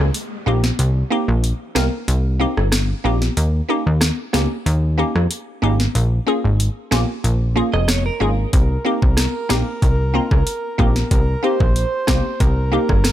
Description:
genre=dancehall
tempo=93 BPM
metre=4/4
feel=straight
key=unclear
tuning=A4 = 440 Hz
part: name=plucky analog bass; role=bass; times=0.0-13.1 s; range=F1 to F2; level=-18 LUFS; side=equal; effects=none
part: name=downlifter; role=sound effects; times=0.0-3.4 s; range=none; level=-38 LUFS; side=left 2 dB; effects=none
part: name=island pop drum kit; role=drums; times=0.1-13.1 s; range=hi-hat, kick drum, rim click, snare drum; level=-19 LUFS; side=equal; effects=overdrive
part: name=glassy wavetable pluck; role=accompaniment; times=0.5-12.9 s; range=Bb3 to Bb4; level=-23 LUFS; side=equal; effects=chorus
part: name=direct-recorded clean electric guitar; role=arpeggios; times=7.7-8.5 s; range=Bb4 to Eb5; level=-26 LUFS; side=right 6 dB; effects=analog chorus, ping-pong delay
part: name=breathy flute-like synth lead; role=second line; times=8.5-13.1 s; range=Bb4 to C5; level=-25 LUFS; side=right 3 dB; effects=chorus, tremolo, ping-pong delay
room=little or no reverb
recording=none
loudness=-16 LUFS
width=side -12 dB against mid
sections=0.0-13.1 A section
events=break 0.0-8.5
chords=0.0 Cm7; 3.4 Eb7; 6.0 Bbm7; 8.5 Cm7

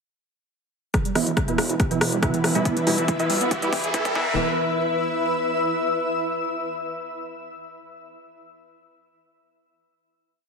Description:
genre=driving peak-time techno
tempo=140 BPM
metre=4/4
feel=straight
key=unclear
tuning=A4 = 441 Hz
part: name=overdriven synth lead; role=riff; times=0.9-4.4 s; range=E3 to B3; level=-28 LUFS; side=right 2 dB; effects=phaser, sidechain pumping, ping-pong delay
part: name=analog drone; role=drone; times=1.6-4.4 s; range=E3 to B3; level=-32 LUFS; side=equal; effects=chorus, sidechain pumping
part: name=electronic kick drum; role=drums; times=0.9-4.2 s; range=none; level=-25 LUFS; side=equal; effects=overdrive
part: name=techno drum kit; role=drums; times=0.9-4.1 s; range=hi-hat, rim click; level=-26 LUFS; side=left 1 dB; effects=overdrive
part: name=riser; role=sound effects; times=2.2-4.4 s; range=none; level=-31 LUFS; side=equal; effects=none
part: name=granular cloud pad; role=texture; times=2.1-6.0 s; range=E4 to E6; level=-25 LUFS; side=left 1 dB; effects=built-in reverb, sidechain pumping
part: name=rave stab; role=stabs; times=1.2-4.3 s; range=B2 to E4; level=-26 LUFS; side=right 2 dB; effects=chorus, built-in reverb, sidechain pumping, ping-pong delay
part: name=gritty driven synth bass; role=bass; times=1.2-4.4 s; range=E1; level=-33 LUFS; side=equal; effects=distortion, sidechain pumping, high-pass filter
room=wet digital room reverb, RT60 1.0 s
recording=heavily compressed radio sound, high-pass filter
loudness=-21 LUFS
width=side -5 dB against mid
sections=0.9-4.4 build; 4.4-6.1 final note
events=build-up 0.9-4.4; filter sweep on analog synth lead 0.9-4.4; filter sweep on synth stab 0.9-4.4; filter sweep 0.9-4.4; riser 2.2-4.4; drum fill 2.7-4.4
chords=0.9 E5

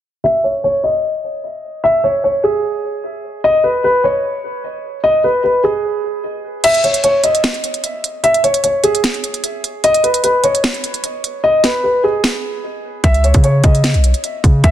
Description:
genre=hip hop, trap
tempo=150 BPM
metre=4/4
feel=half-time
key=unclear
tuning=A4 = 440 Hz
part: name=dark concert grand piano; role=melody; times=0.2-14.7 s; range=G#4 to E5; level=-14 LUFS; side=equal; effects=low-pass filter, digital delay
part: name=trap drum kit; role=drums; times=6.6-14.7 s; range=crash cymbal, hi-hat, kick drum, snare drum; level=-16 LUFS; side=equal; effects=none
part: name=long sustained 808-style bass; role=bass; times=13.0-14.7 s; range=B1 to C#3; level=-13 LUFS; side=equal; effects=none
room=light reverb, digital ambience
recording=dense, heavily limited modern master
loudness=-13 LUFS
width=side -11 dB against mid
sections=0.2-6.6 A section; 6.6-14.7 B section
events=filter sweep on grand piano 0.2-6.6; kick muted 6.6-13.0; hi-hats muted 11.4-13.0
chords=0.2 N.C.; 13.0 C#sus2

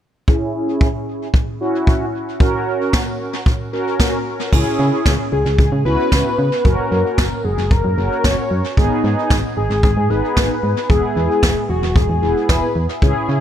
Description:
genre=synth-pop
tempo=113 BPM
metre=4/4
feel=straight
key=unclear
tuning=A4 = 440 Hz
part: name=mellow synth brass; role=accompaniment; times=0.3-13.4 s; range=B3 to A#4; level=-21 LUFS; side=equal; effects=chorus, low-pass filter, tape echo
part: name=jazz brush drum kit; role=drums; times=0.3-13.1 s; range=crash cymbal, kick drum, snare drum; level=-18 LUFS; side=equal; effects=tape echo
part: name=solid FM bass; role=bass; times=4.5-13.4 s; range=E1 to C#3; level=-19 LUFS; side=equal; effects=none
part: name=wide unison lead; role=melody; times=5.3-12.9 s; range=F#4 to C#5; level=-20 LUFS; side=left 2 dB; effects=tape echo
room=light reverb, studio ambience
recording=echo-heavy mix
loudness=-15 LUFS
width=side -10 dB against mid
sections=0.3-4.5 A section; 4.5-13.4 B section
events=filter sweep on analog polysynth 0.3-4.5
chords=0.3 C#m; 2.4 F#; 4.5 C#m; 6.7 F#; 8.8 G#m; 10.9 E

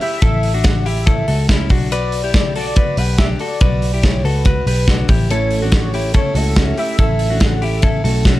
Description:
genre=jangly indie pop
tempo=142 BPM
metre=4/4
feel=straight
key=A mixolydian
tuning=A4 = 440 Hz
part: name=warm velvety synth lead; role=melody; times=0.0-8.4 s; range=B4 to F#5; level=-24 LUFS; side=equal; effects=chorus
part: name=direct-recorded clean electric guitar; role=arpeggios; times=0.0-8.4 s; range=C#4 to B4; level=-24 LUFS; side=left 5 dB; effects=none
part: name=modern studio drum kit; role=drums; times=0.0-8.4 s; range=hi-hat, kick drum, ride cymbal, snare drum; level=-16 LUFS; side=equal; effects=none
part: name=vintage muted picked electric bass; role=bass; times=0.2-8.4 s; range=A1 to C#2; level=-19 LUFS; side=equal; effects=none
part: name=fingerpicked steel-string acoustic guitar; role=accompaniment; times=5.3-8.4 s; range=A2 to A4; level=-24 LUFS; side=right 6 dB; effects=none
room=studio ambience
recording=dry, gritty hardware recording, transformer saturation, cassette tape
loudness=-13 LUFS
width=side -16 dB against mid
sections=0.0-8.4 A section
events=none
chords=0.0 A; 1.7 Bm; 5.1 A

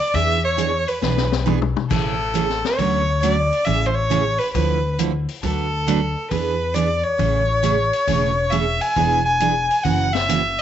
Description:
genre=country, western swing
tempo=136 BPM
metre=4/4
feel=swing 67% on 8ths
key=A major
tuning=A4 = 442 Hz
part: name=rich fiddle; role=melody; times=0.0-10.6 s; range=A4 to G#5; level=-20 LUFS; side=left 1 dB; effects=none
part: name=picked steel-string acoustic guitar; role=accompaniment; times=0.1-10.4 s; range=C#3 to B4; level=-23 LUFS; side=right 8 dB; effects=none
part: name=upright bass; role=bass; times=0.1-10.6 s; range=E1 to E2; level=-24 LUFS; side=left 2 dB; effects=none
part: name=vintage drum kit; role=drums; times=0.1-10.6 s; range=crash cymbal, hi-hat, kick drum, snare drum, toms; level=-27 LUFS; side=left 9 dB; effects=none
room=moderate spring reverb, RT60 1.2 s, studio reverb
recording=1960s-style stereo with parts hard left and right, nothing above 7.9 kHz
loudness=-17 LUFS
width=side -10 dB against mid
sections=0.0-10.6 A section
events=drum fill 1.0-1.9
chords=0.1 E7; 1.9 Amaj7; 2.8 Dmaj7; 3.7 Amaj7; 4.5 Dmadd9; 5.4 Bm7/D; 6.3 E7; 7.2 Amaj7; 9.0 E7; 9.8 F#7

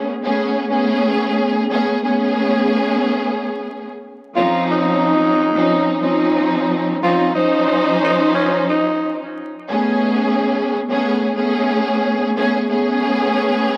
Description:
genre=hip hop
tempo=90 BPM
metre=4/4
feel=swing 59% on 16ths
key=unclear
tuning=A4 = 440 Hz
part: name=warm studio string section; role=accompaniment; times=0.0-13.8 s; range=F3 to C5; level=-19 LUFS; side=equal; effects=cassette tape, high-pass filter, low-pass filter
part: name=growling tenor saxophone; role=melody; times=4.4-9.2 s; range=Db4 to F4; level=-21 LUFS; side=equal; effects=high-pass filter, low-pass filter, tape echo
room=moderate plate reverb, RT60 3.7 s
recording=echo-heavy mix, vinyl crackle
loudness=-18 LUFS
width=mono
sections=0.0-13.8 A section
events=none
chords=0.0 Amaj9; 4.4 Dbmaj9; 9.7 Amaj9

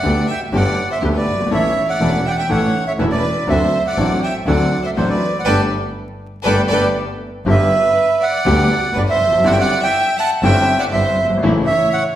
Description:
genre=tango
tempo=121 BPM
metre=4/4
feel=rubato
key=G major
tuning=A4 = 440 Hz
part: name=bandoneon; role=melody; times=0.0-12.0 s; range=B4 to A5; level=-18 LUFS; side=right 2 dB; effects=none
part: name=bright studio violin section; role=second line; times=0.0-12.0 s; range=E4 to F#5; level=-24 LUFS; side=left 1 dB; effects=none
part: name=clear upright piano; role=accompaniment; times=0.0-11.6 s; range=E1 to A4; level=-20 LUFS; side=left 2 dB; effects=none
part: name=dark chamber string section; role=stabs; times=0.0-11.6 s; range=A3 to G4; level=-27 LUFS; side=right 1 dB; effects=none
part: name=rich double bass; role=bass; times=0.0-11.6 s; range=E1 to D2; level=-21 LUFS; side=equal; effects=none
room=wet recital hall reverb, RT60 1.3 s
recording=recorded in a church or concert hall, vinyl crackle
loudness=-14 LUFS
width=side -12 dB against mid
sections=0.0-7.5 A section; 7.5-12.2 A section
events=band accent 5.5-7.5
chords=0.0 Gadd9; 1.5 A; 3.5 D7; 5.5 Gadd9; 7.5 G; 9.4 Cadd9/G; 11.4 A

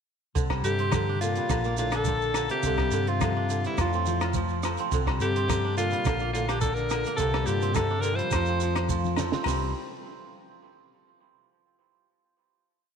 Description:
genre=highlife guitar band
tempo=106 BPM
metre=4/4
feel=straight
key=unclear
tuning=A4 = 441 Hz
part: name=kora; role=arpeggios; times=0.3-9.7 s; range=D3 to F4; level=-31 LUFS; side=right 9 dB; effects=none
part: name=semi-hollow electric guitar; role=accompaniment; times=0.4-9.7 s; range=Bb2 to C5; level=-36 LUFS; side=left 9 dB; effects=spring reverb
part: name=hollow-body short-scale fingered electric bass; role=bass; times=0.4-9.7 s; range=Bb1 to G2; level=-30 LUFS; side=equal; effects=none
part: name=compact cocktail drum kit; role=drums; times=0.4-9.6 s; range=hi-hat, kick drum, rim click, snare drum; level=-33 LUFS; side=right 2 dB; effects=none
part: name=congas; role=percussion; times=0.4-9.7 s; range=none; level=-36 LUFS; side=left 11 dB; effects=none
part: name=shekere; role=percussion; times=0.4-9.7 s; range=none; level=-37 LUFS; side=right 7 dB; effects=none
part: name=agogo bells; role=percussion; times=0.5-9.6 s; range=none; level=-36 LUFS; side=left 13 dB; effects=none
part: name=edgy alto saxophone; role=melody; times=0.6-8.9 s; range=E4 to C5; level=-30 LUFS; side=equal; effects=none
part: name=trombone with bucket mute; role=second line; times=0.6-8.9 s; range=G2 to F3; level=-35 LUFS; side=left 9 dB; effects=none
room=moderate echo chamber reverb, RT60 2.3 s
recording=1960s-style stereo with parts hard left and right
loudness=-24 LUFS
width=side -7 dB against mid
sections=0.4-9.4 A section; 9.4-11.7 final chord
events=drum fill 8.7-9.4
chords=0.4 Csus2; 1.5 Bb; 2.6 Csus2; 3.8 F; 4.9 Csus2; 6.0 Bb; 7.2 Csus2; 8.3 F; 9.4 C

